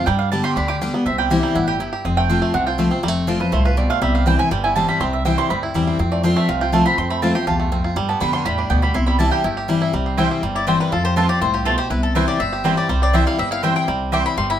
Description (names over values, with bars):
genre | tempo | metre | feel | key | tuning
bluegrass | 243 BPM | 4/4 | straight | C major | A4 = 439 Hz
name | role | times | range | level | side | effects
bluegrass banjo | melody | 0.0-14.6 s | D3 to G4 | -24 LUFS | right 3 dB | none
picked steel-string acoustic guitar | accompaniment | 0.0-14.6 s | E2 to G4 | -21 LUFS | left 3 dB | none
mandolin | stabs | 0.0-14.2 s | C4 to D6 | -22 LUFS | right 5 dB | none
upright bass | bass | 0.0-14.6 s | F1 to G2 | -23 LUFS | equal | none
mandolin | melody | 10.6-14.6 s | F4 to D6 | -22 LUFS | left 5 dB | none
room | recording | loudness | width
moderate small room reverb, RT60 0.5 s | minimal, uncompressed stereo recording | -16 LUFS | side -10 dB against mid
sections
0.0-2.0 A section; 2.0-9.9 A section; 9.9-14.6 B section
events
mandolin solo 0.0-9.9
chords
0.1 G; 1.1 C; 2.0 F; 4.0 C; 6.0 F; 8.0 G; 8.9 C; 10.9 F; 11.9 C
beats
| 0.07 0.32 0.57 0.81 | 1.06 1.31 1.55 1.80 | 2.05 2.29 2.54 2.79 | 3.03 3.28 3.53 3.77 | 4.02 4.27 4.51 4.76 | 5.01 5.25 5.50 5.75 | 5.99 6.24 6.49 6.73 | 6.98 7.22 7.47 7.72 | 7.96 8.21 8.46 8.70 | 8.95 9.20 9.44 9.69 | 9.93 10.18 10.43 10.67 | 10.92 11.17 11.41 11.66 | 11.91 12.15 12.40 12.65 | 12.89 13.14 13.39 13.63 | 13.88 14.13 14.38